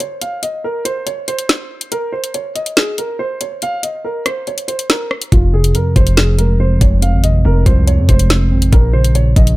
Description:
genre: hip hop, drill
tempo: 141 BPM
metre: 4/4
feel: half-time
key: F minor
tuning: A4 = 443 Hz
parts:
  - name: dark concert grand piano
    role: melody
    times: 0.0-9.6 s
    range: F4 to F5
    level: -21 LUFS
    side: right 1 dB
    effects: none
  - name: drill drum kit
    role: drums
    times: 0.0-9.6 s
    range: hi-hat, kick drum, rim click, snare drum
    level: -13 LUFS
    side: equal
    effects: overdrive
  - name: mellow tine electric piano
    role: accompaniment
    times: 5.3-9.6 s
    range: F2 to C4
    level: -15 LUFS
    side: right 1 dB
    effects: none
  - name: hard-hitting 808-style bass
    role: bass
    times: 5.3-9.6 s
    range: F1 to F2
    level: -14 LUFS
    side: equal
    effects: none
room: little or no reverb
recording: none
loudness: -12 LUFS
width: side -18 dB against mid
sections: 0.0-9.6 A section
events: break 0.0-5.3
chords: 0.0 N.C.; 5.3 Fm; 8.7 Bbmadd9

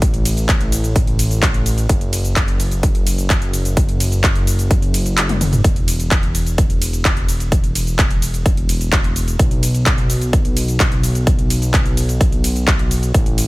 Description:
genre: EDM, festival progressive house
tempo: 128 BPM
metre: 4/4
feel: straight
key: unclear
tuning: A4 = 441 Hz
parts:
  - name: fat analog bass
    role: bass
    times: 0.0-13.5 s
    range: E1 to B1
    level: -18 LUFS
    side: equal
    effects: sidechain pumping
  - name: big-room dance drum kit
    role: drums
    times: 0.0-13.5 s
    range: handclaps, hi-hat, ride cymbal, shaker, toms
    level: -21 LUFS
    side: equal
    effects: overdrive, small room reverb
  - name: electronic kick drum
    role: drums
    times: 0.0-13.2 s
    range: none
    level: -16 LUFS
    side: equal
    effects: overdrive, small room reverb
room: little or no reverb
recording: none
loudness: -14 LUFS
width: side -20 dB against mid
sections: 0.0-13.5 A section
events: kick drops out 5.2-5.6; drum fill 5.3-5.6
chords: none

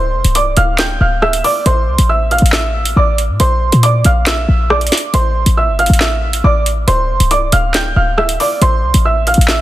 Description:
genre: hip hop, drill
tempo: 138 BPM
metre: 4/4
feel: half-time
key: A phrygian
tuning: A4 = 440 Hz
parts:
  - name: warm baby grand piano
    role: melody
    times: 0.0-9.6 s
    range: C5 to G6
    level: -15 LUFS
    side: right 2 dB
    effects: tape echo
  - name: short 808-style bass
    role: bass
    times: 0.0-9.6 s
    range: C1 to Bb2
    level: -13 LUFS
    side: equal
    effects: none
  - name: drill drum kit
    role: drums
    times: 0.2-9.6 s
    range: handclaps, hi-hat, rim click, snare drum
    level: -17 LUFS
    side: equal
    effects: none
room: little or no reverb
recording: dense, heavily limited modern master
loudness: -11 LUFS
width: side -14 dB against mid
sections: 0.0-9.6 A section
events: none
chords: 0.0 Dm; 1.7 Am; 3.4 Bb; 5.1 Am; 6.9 Dm; 8.6 Am

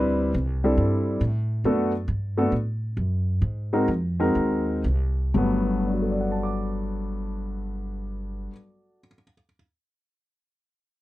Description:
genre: jazz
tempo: 117-138 BPM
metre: 4/4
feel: swing 66% on 8ths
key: G major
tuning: A4 = 440 Hz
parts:
  - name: warm grand piano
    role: melody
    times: 0.0-9.6 s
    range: G2 to D6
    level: -24 LUFS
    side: left 1 dB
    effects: none
  - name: upright bass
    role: bass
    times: 0.0-8.5 s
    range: G1 to A2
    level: -26 LUFS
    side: equal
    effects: none
room: light reverb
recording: dry, close 1970s-style studio recording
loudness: -22 LUFS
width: side -16 dB against mid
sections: 0.0-5.4 A section; 5.4-9.4 B section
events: slowing down 1.7-5.4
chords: 0.0 D9sus4; 1.7 Bm7; 3.4 Ab9; 5.4 Gmaj9

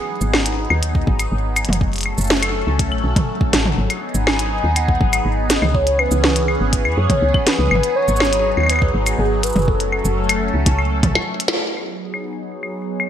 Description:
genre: IDM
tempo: 122 BPM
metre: 4/4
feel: straight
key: G# phrygian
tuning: A4 = 439 Hz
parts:
  - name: phased analog pad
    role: sustained chords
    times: 0.0-13.1 s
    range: E3 to A4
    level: -24 LUFS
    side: equal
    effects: phaser, chorus
  - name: woody FM bass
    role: bass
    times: 0.2-11.2 s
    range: F#1 to F#2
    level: -20 LUFS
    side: equal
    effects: none
  - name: glitchy drum kit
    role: drums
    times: 0.2-13.1 s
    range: cabasa, claves, hi-hat, snare drum, toms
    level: -20 LUFS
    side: equal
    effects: low-pass filter on hats, small room ambience, low-pass filter on perc, low-pass filter on snare, low-pass filter on toms, ping-pong delay
  - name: electronic kick drum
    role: drums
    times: 0.9-11.1 s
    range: none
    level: -19 LUFS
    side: equal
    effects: small room ambience
  - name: warm velvety synth lead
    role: melody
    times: 4.3-13.1 s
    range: G#4 to G#5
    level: -22 LUFS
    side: left 1 dB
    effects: chorus, digital delay
room: moderate plate reverb, RT60 1.7 s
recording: bright 1980s-style digital production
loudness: -15 LUFS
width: side -10 dB against mid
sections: 0.0-11.6 A section; 11.6-13.1 B section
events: break 11.2-11.6; drum fill 11.2-11.6; band accent 11.5; filter sweep on drum 11.6-13.1; filter sweep on analog synth pad 11.6-13.1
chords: 0.0 G#m7; 1.8 F#m; 3.8 G#m7; 5.7 C#m7; 7.7 G#m7; 9.7 F#m; 11.6 G#m7

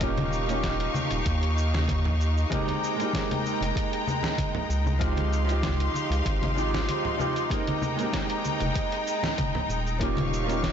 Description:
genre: sunset chillout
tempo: 96 BPM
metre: 4/4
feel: swing 54% on 16ths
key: F minor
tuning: A4 = 440 Hz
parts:
  - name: flamenco guitar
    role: accompaniment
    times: 0.0-10.7 s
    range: F3 to G4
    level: -30 LUFS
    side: right 2 dB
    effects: auto-pan, digital delay
  - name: bright symphonic string section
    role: sustained chords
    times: 0.0-10.7 s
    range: Ab3 to Db6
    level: -31 LUFS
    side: left 2 dB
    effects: none
  - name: round analog bass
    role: bass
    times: 0.0-10.7 s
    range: Eb1 to Eb2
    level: -26 LUFS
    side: equal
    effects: none
  - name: dusty soul sampler-style drum kit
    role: drums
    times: 0.0-10.7 s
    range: cabasa, congas, hi-hat, snare drum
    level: -33 LUFS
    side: left 2 dB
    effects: studio reverb
  - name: electronic kick drum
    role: drums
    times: 0.0-10.7 s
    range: none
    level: -32 LUFS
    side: equal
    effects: studio reverb
  - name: congas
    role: percussion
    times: 0.2-10.3 s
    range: none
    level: -34 LUFS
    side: right 2 dB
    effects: none
room: moderate lush hall reverb, RT60 1.6 s, small room reverb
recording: blown-out, overdriven recording, overdrive, nothing above 7.8 kHz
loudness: -24 LUFS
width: side -8 dB against mid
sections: 0.0-10.7 A section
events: none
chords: 0.0 Eb9; 2.5 Fm11 (rootless); 5.0 Dbmaj9#11; 7.5 Fm11 (rootless); 10.0 Eb9

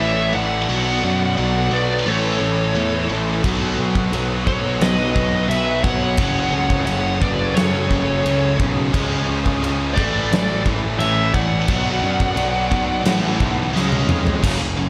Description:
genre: heavy metal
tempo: 87 BPM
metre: 4/4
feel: straight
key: unclear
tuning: A4 = 440 Hz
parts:
  - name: high-gain lead guitar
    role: melody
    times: 0.0-13.7 s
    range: C#5 to F#5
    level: -26 LUFS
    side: equal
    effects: distortion
  - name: high-gain lead guitar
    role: second line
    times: 0.0-13.0 s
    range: A4 to D5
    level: -32 LUFS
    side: equal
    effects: distortion, slapback echo, delay
  - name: bright chamber string section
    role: sustained chords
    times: 0.0-14.9 s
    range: C#3 to G#5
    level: -36 LUFS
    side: equal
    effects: none
  - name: distorted electric guitar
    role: riff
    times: 0.0-14.9 s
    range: F#2 to C#4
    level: -30 LUFS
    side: equal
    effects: distortion, slapback echo
  - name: heavy high-gain guitar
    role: riff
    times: 0.0-14.9 s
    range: F#2 to C#4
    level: -28 LUFS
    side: equal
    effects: distortion
  - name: tight distorted guitar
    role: riff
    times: 0.0-14.9 s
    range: F#2 to G#3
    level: -29 LUFS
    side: equal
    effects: distortion, slapback echo
  - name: fuzz picked electric bass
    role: bass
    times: 0.0-14.9 s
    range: F#1 to F#2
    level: -25 LUFS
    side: equal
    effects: overdrive
  - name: big rock drum kit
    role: drums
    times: 3.4-14.6 s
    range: crash cymbal, kick drum, snare drum, toms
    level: -24 LUFS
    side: equal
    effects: none
room: moderate lush hall reverb, RT60 1.9 s, studio reverb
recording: big arena sound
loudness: -19 LUFS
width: mono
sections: 0.0-14.4 A section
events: drum fill 13.7-14.4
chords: 0.0 A5; 0.7 Bm; 2.1 A; 3.4 B; 6.2 F#m; 8.9 C#; 10.0 A5; 11.7 Bm; 13.1 A5; 13.7 C#

